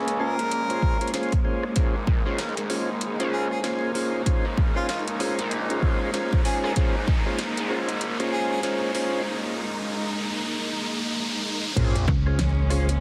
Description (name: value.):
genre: glitch hop.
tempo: 96 BPM.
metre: 4/4.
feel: swing 60% on 16ths.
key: Bb minor.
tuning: A4 = 440 Hz.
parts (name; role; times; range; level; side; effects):
clear studio string section; sustained chords; 0.0-13.0 s; Ab3 to Eb4; -33 LUFS; equal; vintage 12-bit sampler grit, sidechain pumping.
gritty driven synth bass; bass; 0.0-12.1 s; Ab1 to Db2; -33 LUFS; equal; high-pass filter.
riser and sub drop; sound effects; 0.1-13.0 s; none; -35 LUFS; equal; none.
pop drum kit; drums; 0.1-13.0 s; crash cymbal, hi-hat, rim click, snare drum; -35 LUFS; equal; high-pass filter on snare, high-pass filter on hats, high-pass filter on cymbals.
clear harmonica; melody; 0.2-8.6 s; F4 to Bb4; -34 LUFS; equal; delay.
tonewheel organ; stabs; 0.2-12.9 s; Db4 to C5; -32 LUFS; equal; slow rotary speaker, sidechain pumping, delay.
electronic kick drum; drums; 0.8-7.2, 11.8-12.2 s; none; -25 LUFS; equal; none.
slap-like FM bass; bass; 12.1-13.0 s; Db2; -25 LUFS; equal; none.
room: moderate plate reverb, RT60 3.0 s.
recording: heavily compressed radio sound, vinyl crackle.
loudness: -25 LUFS.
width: mono.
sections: 0.0-11.8 A section; 11.8-13.0 B section.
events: build-up 0.0-11.8; riser 0.1-11.8; drop 11.8-13.0; impact 11.8-13.0.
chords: 0.0 Bbm9.